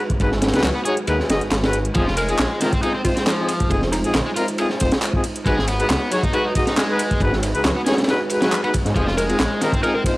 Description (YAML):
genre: breakbeat, breaks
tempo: 137 BPM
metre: 4/4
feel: swing 54% on 16ths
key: unclear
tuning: A4 = 438 Hz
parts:
  - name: dark analog pad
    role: sustained chords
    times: 0.0-10.2 s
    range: Ab3 to C5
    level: -28 LUFS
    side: right 1 dB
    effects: chorus, sidechain pumping
  - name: crunchy breakbeat drum kit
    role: drums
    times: 0.1-10.2 s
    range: kick drum, ride cymbal, snare drum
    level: -21 LUFS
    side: equal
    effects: none
  - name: garage drum kit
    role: drums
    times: 0.1-10.2 s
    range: handclaps, hi-hat, ride cymbal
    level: -29 LUFS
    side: equal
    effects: none
  - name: mellow brass ensemble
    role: stabs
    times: 0.2-10.1 s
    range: C4 to Eb5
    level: -23 LUFS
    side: left 1 dB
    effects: vintage 12-bit sampler grit, analog delay
  - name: detuned saw bass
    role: bass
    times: 0.2-9.5 s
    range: F1 to Ab2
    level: -24 LUFS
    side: equal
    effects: tube saturation
  - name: crunchy overdriven guitar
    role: riff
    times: 0.6-10.0 s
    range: Eb3 to Ab4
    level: -26 LUFS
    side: equal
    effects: analog delay
  - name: hollow square pluck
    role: melody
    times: 2.2-4.3, 9.2-10.0 s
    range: Eb4 to Bb4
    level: -26 LUFS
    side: equal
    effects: chorus, AM radio sound, analog delay
room: small room reverb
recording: dry, gritty hardware recording, vinyl crackle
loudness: -17 LUFS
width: side -20 dB against mid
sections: 0.0-10.2 A section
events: none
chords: 0.0 Abm7; 2.0 Fm7; 5.2 Abm7; 9.0 Fm7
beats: | 0.20 0.64 1.08 1.51 | 1.95 2.39 2.83 3.27 | 3.70 4.14 4.58 5.02 | 5.46 5.89 6.33 6.77 | 7.21 7.65 8.08 8.52 | 8.96 9.40 9.84